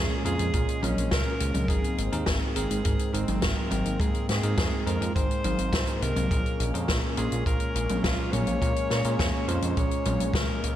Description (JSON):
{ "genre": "synthwave", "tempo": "104 BPM", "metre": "4/4", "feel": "straight", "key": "Bb minor", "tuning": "A4 = 440 Hz", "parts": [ { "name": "warm alto saxophone", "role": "melody", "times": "0.0-10.8 s", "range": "C4 to Db5", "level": "-33 LUFS", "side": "equal", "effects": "digital delay" }, { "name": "warm analog pad", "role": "sustained chords", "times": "0.0-10.8 s", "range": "Ab3 to Db4", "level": "-33 LUFS", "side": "equal", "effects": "chorus, sidechain pumping" }, { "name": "bell-like tine electric piano", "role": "stabs", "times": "0.0-10.8 s", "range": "Ab2 to Bb4", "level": "-34 LUFS", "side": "right 2 dB", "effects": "fast stereo tremolo" }, { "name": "fat analog bass", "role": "bass", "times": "0.0-10.8 s", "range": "Ab1 to Bb2", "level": "-29 LUFS", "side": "equal", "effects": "none" }, { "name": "open jazz drum kit", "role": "drums", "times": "0.3-10.8 s", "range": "hi-hat, snare drum, toms", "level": "-30 LUFS", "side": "left 1 dB", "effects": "gated reverb" }, { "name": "kick drum", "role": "drums", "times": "0.5-10.5 s", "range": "none", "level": "-30 LUFS", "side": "equal", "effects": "none" } ], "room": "light reverb, small room ambience", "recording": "bright 1980s-style digital production, tape saturation", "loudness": "-24 LUFS", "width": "side -12 dB against mid", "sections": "0.0-10.8 A section", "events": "none", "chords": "0.0 Bbm7; 1.7 Abadd9; 6.3 Bbm7" }